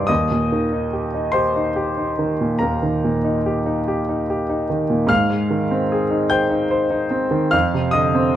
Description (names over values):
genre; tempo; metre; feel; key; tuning
classical, romantic nocturne for solo piano; 48 BPM (dotted quarters); 12/8; rubato; unclear; A4 = 440 Hz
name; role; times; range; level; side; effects
clear concert grand piano; solo; 0.0-8.4 s; Eb2 to G6; -17 LUFS; equal; none
room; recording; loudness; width
moderate large studio reverb, RT60 1.1 s; close, detailed microphones; -17 LUFS; side -11 dB against mid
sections
0.0-8.4 A section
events
none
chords
0.1 Eb; 5.1 Ab6; 7.5 Dm7/F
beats
| 0.09 1.35 2.61 3.87 | 5.10 6.32 7.54